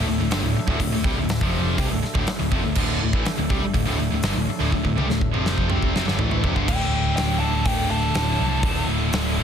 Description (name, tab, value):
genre	hard rock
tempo	123 BPM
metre	4/4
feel	straight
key	D minor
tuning	A4 = 440 Hz
part	mellow tonewheel organ	sustained chords	0.0-9.4 s	D4 to E5	-34 LUFS	right 2 dB	slow rotary speaker
part	scooped high-gain guitar	riff	0.0-9.4 s	D2 to C4	-26 LUFS	left 10 dB	distortion
part	scooped high-gain guitar	riff	0.0-9.4 s	D2 to C4	-28 LUFS	right 12 dB	distortion
part	tight distorted guitar	riff	0.0-6.7 s	D2 to C4	-30 LUFS	right 1 dB	distortion
part	picked electric bass	bass	0.0-9.4 s	D1 to C2	-26 LUFS	equal	none
part	huge arena drum kit	drums	0.3-9.2 s	crash cymbal, hi-hat, kick drum, snare drum, toms	-25 LUFS	equal	soft clipping on snare
part	biting lead guitar	melody	6.7-8.9 s	G5 to A5	-27 LUFS	equal	overdrive, slapback echo
room	studio reverb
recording	dense, heavily limited modern master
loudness	-20 LUFS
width	side -8 dB against mid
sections	0.0-6.7 A section; 6.7-9.4 B section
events	drum fill 4.7-6.7; lead electric guitar solo 6.7-9.4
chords	0.0 Dm; 6.7 D5